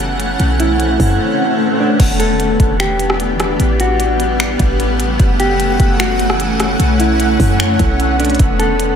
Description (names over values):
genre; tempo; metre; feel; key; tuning
hip hop, atmospheric cloud-rap; 150 BPM; 4/4; half-time; E dorian; A4 = 439 Hz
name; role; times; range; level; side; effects
granular cloud pad; sustained chords; 0.0-9.0 s; G3 to F#5; -16 LUFS; equal; built-in reverb, sidechain pumping
clean 808-style bass; bass; 0.0-9.0 s; E1 to F#2; -17 LUFS; equal; none
minimal click drum kit; drums; 0.0-8.9 s; crash cymbal, finger snaps, hi-hat, kick drum, rim click; -17 LUFS; equal; none
swell; sound effects; 0.8-2.0 s; none; -26 LUFS; equal; none
mellow electric guitar; melody; 0.6-9.0 s; D4 to A4; -20 LUFS; equal; ping-pong delay
room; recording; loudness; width
light reverb, digital ambience; none; -12 LUFS; side -8 dB against mid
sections
0.0-2.0 A section; 2.0-9.0 B section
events
swell 0.8-2.0; drums muted 1.2-2.0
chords
0.4 Bm9; 2.0 Em7; 3.6 A13; 5.2 F#m7; 6.8 Bm9; 8.4 Em7